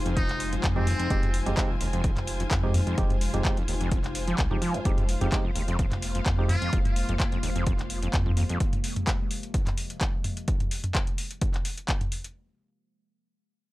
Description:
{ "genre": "acid house", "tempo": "128 BPM", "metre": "4/4", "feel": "swing 54% on 16ths", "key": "F minor", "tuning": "A4 = 440 Hz", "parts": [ { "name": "warbly tape-like pad", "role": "sustained chords", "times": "0.0-10.5 s", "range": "C3 to Eb4", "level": "-38 LUFS", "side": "left 3 dB", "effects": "chorus, built-in reverb, phaser, sidechain pumping" }, { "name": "warm sub bass", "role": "bass", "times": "0.0-8.4 s", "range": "F1 to F2", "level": "-29 LUFS", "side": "equal", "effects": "sidechain pumping" }, { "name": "rich symphonic string section", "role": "texture", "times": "0.0-8.6 s", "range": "F4 to Ab5", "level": "-37 LUFS", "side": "left 1 dB", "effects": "sidechain pumping" }, { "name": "overdriven acid bass", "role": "riff", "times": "0.1-8.6 s", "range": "Eb2 to F3", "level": "-32 LUFS", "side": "equal", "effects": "analog chorus, tape echo" }, { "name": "booming analog drum machine", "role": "drums", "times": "0.1-12.3 s", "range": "handclaps, hi-hat, toms", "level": "-32 LUFS", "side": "equal", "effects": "none" }, { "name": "trumpet with metal mute", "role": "melody", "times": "0.2-1.4, 6.5-6.7 s", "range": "C4 to F4", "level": "-35 LUFS", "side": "equal", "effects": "tape echo" }, { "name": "electronic kick drum", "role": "drums", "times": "0.2-12.0 s", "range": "none", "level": "-28 LUFS", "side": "equal", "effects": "none" }, { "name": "percussive organ stab", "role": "stabs", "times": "0.8-6.5 s", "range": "Ab3 to G4", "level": "-35 LUFS", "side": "right 3 dB", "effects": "chorus, tape echo" } ], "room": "little or no reverb", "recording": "dry, gritty hardware recording", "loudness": "-24 LUFS", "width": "side -18 dB against mid", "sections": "0.0-12.4 A section", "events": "drop 0.0-12.4", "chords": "0.0 Fm7", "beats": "0.17 0.63 | 1.10 1.57 2.04 2.51 | 2.98 3.45 3.92 4.38 | 4.85 5.32 5.79 6.26 | 6.73 7.20 7.67 8.13 | 8.60 9.07 9.54 10.01 | 10.48 10.95 11.42 11.88" }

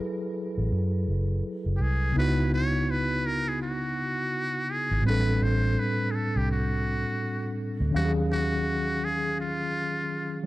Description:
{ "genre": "lo-fi hip hop", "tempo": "83 BPM", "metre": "4/4", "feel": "swing 60% on 16ths", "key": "unclear", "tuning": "A4 = 440 Hz", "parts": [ { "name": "mellow tine electric piano", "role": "accompaniment", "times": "0.0-10.5 s", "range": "A2 to E#5", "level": "-28 LUFS", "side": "equal", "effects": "medium stereo tremolo, cassette tape" }, { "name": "vintage muted fingered electric bass", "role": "bass", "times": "0.6-10.1 s", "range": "F#1 to F#2", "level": "-28 LUFS", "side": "equal", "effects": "tube saturation" }, { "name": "trumpet with metal mute", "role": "melody", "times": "1.8-10.4 s", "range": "E#4 to C#5", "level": "-30 LUFS", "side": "equal", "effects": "none" } ], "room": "small room ambience", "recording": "dry, gritty hardware recording", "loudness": "-25 LUFS", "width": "side -17 dB against mid", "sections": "0.0-10.5 A section", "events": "none", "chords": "0.0 F#m11; 2.2 C#m11; 5.0 Am7; 7.9 D#m11", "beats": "0.71 1.43 | 2.15 2.88 3.60 4.32 | 5.04 5.77 6.49 7.21 | 7.94 8.66 9.38 10.11" }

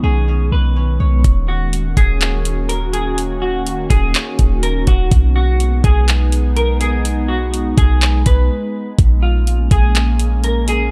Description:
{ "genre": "hip hop, atmospheric cloud-rap", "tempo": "124 BPM", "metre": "4/4", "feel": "half-time", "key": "Eb minor", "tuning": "A4 = 440 Hz", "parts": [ { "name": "semi-hollow electric guitar", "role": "melody", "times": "0.0-10.9 s", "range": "F4 to B4", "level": "-25 LUFS", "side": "equal", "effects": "lush chorus, low-pass filter, digital delay" }, { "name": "warbly tape-like pad", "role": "sustained chords", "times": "0.0-10.9 s", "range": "Eb3 to Gb4", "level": "-26 LUFS", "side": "equal", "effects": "chorus, built-in reverb, phaser, sidechain pumping, low-pass filter" }, { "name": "concert harp", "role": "arpeggios", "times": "0.0-3.7 s", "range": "C#4 to C#5", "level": "-36 LUFS", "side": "equal", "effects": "low-pass filter, digital delay" }, { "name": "clean 808-style bass", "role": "bass", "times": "0.0-10.9 s", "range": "Eb1 to B1", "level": "-17 LUFS", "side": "equal", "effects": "none" }, { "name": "smooth R&B drum kit", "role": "drums", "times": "1.2-10.8 s", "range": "handclaps, hi-hat, kick drum", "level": "-18 LUFS", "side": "equal", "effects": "none" } ], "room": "digital ambience", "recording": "none", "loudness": "-15 LUFS", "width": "mono", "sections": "0.0-1.2 A section; 1.2-10.9 B section", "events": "filter sweep 0.0-1.2; break 8.5-9.0", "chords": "0.0 B69; 1.2 Ebm7; 5.1 B6; 9.0 Bbm7", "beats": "0.28 0.76 | 1.24 1.73 2.21 2.70 | 3.18 3.66 4.15 4.63 | 5.12 5.60 6.08 6.57 | 7.05 7.53 8.02 8.50 | 8.99 9.47 9.95 10.44" }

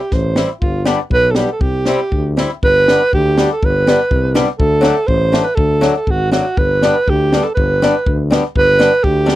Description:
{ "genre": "alpine folk, alpine dance band", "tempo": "121 BPM", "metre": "2/4", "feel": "rubato", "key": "G major", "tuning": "A4 = 440 Hz", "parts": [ { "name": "warm alto saxophone", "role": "melody", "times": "0.0-9.4 s", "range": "F4 to C5", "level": "-15 LUFS", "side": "right 2 dB", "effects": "none" }, { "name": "mellow tuba", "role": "bass", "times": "0.1-9.4 s", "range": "G1 to D2", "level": "-18 LUFS", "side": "left 1 dB", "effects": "tube saturation" }, { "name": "compact cocktail drum kit", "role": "drums", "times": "0.1-9.4 s", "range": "kick drum, snare drum", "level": "-18 LUFS", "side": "equal", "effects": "none" }, { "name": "fingerpicked swing-style acoustic guitar", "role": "accompaniment", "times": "0.4-9.4 s", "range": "F#3 to E4", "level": "-16 LUFS", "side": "left 3 dB", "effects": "none" } ], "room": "light reverb", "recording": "dry, close 1970s-style studio recording, faint mains hum", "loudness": "-12 LUFS", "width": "side -15 dB against mid", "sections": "0.0-2.6 A section; 2.6-9.4 B section", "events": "none", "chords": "0.0 C; 0.6 G; 1.6 C; 2.6 G; 4.6 D; 6.6 G", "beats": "0.12 | 0.62 1.12 | 1.61 2.12 | 2.63 3.13 | 3.63 4.11 | 4.60 5.09 | 5.58 6.08 | 6.58 7.08 | 7.57 8.06 | 8.55 9.03" }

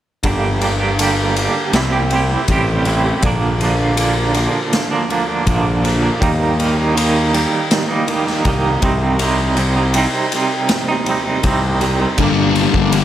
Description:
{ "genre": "quiet-loud alternative rock", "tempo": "80 BPM", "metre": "4/4", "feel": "straight", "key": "G minor", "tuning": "A4 = 440 Hz", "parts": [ { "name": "twangy electric guitar", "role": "arpeggios", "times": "0.2-13.0 s", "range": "G2 to G4", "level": "-17 LUFS", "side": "right 4 dB", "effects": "tremolo, digital delay" }, { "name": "fuzz picked electric bass", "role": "bass", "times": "0.2-13.0 s", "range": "G1 to Eb2", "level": "-18 LUFS", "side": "left 1 dB", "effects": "overdrive" }, { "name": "raw garage drum kit", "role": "drums", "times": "0.2-13.0 s", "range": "crash cymbal, kick drum, ride cymbal, snare drum", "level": "-20 LUFS", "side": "left 1 dB", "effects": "none" }, { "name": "thick fuzz guitar", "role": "riff", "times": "12.2-13.0 s", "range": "G2 to D4", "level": "-15 LUFS", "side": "left 11 dB", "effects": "distortion" } ], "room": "light reverb, small room ambience", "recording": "none", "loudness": "-14 LUFS", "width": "side -12 dB against mid", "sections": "0.2-12.2 A section", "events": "none", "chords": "0.2 Gm; 1.7 C; 3.2 Bb; 6.2 Eb; 8.8 Cm; 12.2 Gm", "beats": "| 0.25 0.99 1.74 2.49 | 3.24 3.98 4.73 5.48 | 6.22 6.97 7.71 8.46 | 9.21 9.95 10.70 11.44 | 12.19 12.93" }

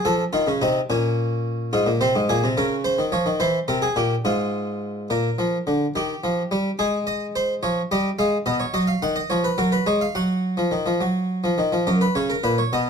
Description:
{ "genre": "classical, baroque-style two-part invention for harpsichord", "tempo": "71 BPM (dotted quarters)", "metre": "6/8", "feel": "straight", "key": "Bb minor, F# major from 8.5 s", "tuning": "A4 = 438 Hz", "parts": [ { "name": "harpsichord", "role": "solo", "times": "0.0-12.9 s", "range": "F#2 to F#5", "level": "-20 LUFS", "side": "equal", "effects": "none" } ], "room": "moderate studio reverb, RT60 0.8 s", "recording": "dark, warm production", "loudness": "-20 LUFS", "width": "side -6 dB against mid", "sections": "0.0-5.1 A section; 5.1-11.9 B section; 11.9-12.9 C section", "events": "none", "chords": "0.1 F; 0.9 Bbm; 1.7 Fm/Ab; 2.6 Bbm/Db; 3.4 C; 4.2 Fm/Ab; 5.1 Bb; 6.0 Eb; 6.8 Ab; 7.6 Db/F; 8.5 Badd9; 9.3 C#7/E#; 10.2 D#madd9; 11.9 F#", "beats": "| 0.05 0.89 | 1.73 2.56 | 3.39 4.25 | 5.10 5.95 | 6.79 7.63 | 8.46 9.30 | 10.15 11.01 | 11.87 12.72" }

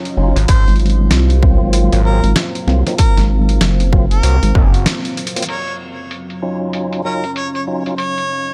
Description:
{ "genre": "glitch hop", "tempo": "96 BPM", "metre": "4/4", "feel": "swing 61% on 16ths", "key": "Eb dorian", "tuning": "A4 = 435 Hz", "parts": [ { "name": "dark analog pad", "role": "sustained chords", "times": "0.0-8.5 s", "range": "Gb3 to Eb5", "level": "-31 LUFS", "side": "equal", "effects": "chorus, phaser, sidechain pumping" }, { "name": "deep dark ambient pad", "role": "texture", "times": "0.0-8.5 s", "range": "Gb3 to F5", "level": "-29 LUFS", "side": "equal", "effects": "chorus, built-in reverb, sidechain pumping" }, { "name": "boom bap sampler-style drum kit", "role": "drums", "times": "0.1-8.3 s", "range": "crash cymbal, hi-hat, snare drum", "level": "-23 LUFS", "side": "equal", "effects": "low-pass filter on snare, low-pass filter on hats, low-pass filter on cymbals" }, { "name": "tonewheel organ", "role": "stabs", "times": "0.2-7.9 s", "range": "Gb3 to Gb4", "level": "-26 LUFS", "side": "equal", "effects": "overdrive, fast rotary speaker, sidechain pumping, low-pass filter, delay" }, { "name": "vowel-sweep wobble bass", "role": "bass", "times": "0.2-4.5 s", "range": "Gb1 to C2", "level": "-15 LUFS", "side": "equal", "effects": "chorus" }, { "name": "gritty driven synth bass", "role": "bass", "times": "0.4-4.9 s", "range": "Gb1 to C2", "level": "-16 LUFS", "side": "equal", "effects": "none" }, { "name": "warm harmonica", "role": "melody", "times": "0.5-8.5 s", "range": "Db4 to Db5", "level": "-26 LUFS", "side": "equal", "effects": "vintage 12-bit sampler grit, delay" }, { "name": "electronic kick drum", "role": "drums", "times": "0.5-4.7 s", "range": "none", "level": "-15 LUFS", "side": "equal", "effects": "none" } ], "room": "little or no reverb", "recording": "none", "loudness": "-15 LUFS", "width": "mono", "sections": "0.0-5.5 A section; 5.5-8.5 B section", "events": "break 4.9-5.5; band accent 4.9-5.2; drum fill 5.2-5.5; filter sweep on tonewheel organ 5.5-8.5", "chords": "0.5 Ab13; 5.5 Ebm9", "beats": "| 0.48 1.11 1.74 2.36 | 2.98 3.61 4.24 4.86 | 5.49 6.11 6.74 7.36 | 7.99" }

